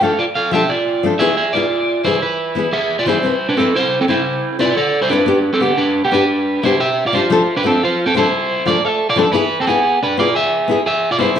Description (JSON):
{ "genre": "highlife", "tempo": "118 BPM (dotted quarters)", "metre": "12/8", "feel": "straight", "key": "A minor", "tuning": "A4 = 438 Hz", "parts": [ { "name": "electric guitar at the edge of break-up", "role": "melody", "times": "0.0-11.4 s", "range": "B3 to F5", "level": "-15 LUFS", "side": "right 2 dB", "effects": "spring reverb, tape echo" }, { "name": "nylon-string guitar", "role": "accompaniment", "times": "0.0-11.4 s", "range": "E3 to B4", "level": "-17 LUFS", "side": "left 5 dB", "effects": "none" } ], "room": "moderate small room reverb, RT60 0.5 s", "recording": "studio reverb", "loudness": "-14 LUFS", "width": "side -8 dB against mid", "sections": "0.0-3.2 A section; 3.2-11.4 B section", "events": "none", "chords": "0.0 Dm; 1.2 E; 3.2 Amadd9; 5.3 G; 7.3 Dm; 9.3 E", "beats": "0.18 0.69 | 1.20 1.71 2.22 2.73 | 3.24 3.75 4.25 4.76 | 5.27 5.78 6.29 6.79 | 7.30 7.81 8.32 8.82 | 9.33 9.84 10.35 10.85 | 11.36" }